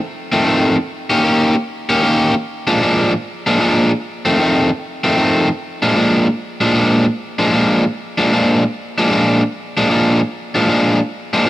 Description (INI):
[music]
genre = blues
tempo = 153 BPM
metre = 4/4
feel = swing 66% on 8ths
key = Bb mixolydian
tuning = A4 = 439 Hz
[part]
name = crunchy overdriven guitar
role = solo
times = 0.3-11.5 s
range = F2 to G4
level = -13 LUFS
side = equal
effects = digital delay
[sound]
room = moderate studio reverb, RT60 0.6 s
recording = none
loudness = -13 LUFS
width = side -15 dB against mid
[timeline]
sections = 0.0-5.6 A section; 5.6-11.5 B section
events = none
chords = 0.0 F7; 0.8 Eb7; 2.4 Bb7; 4.0 F7; 5.6 Bb7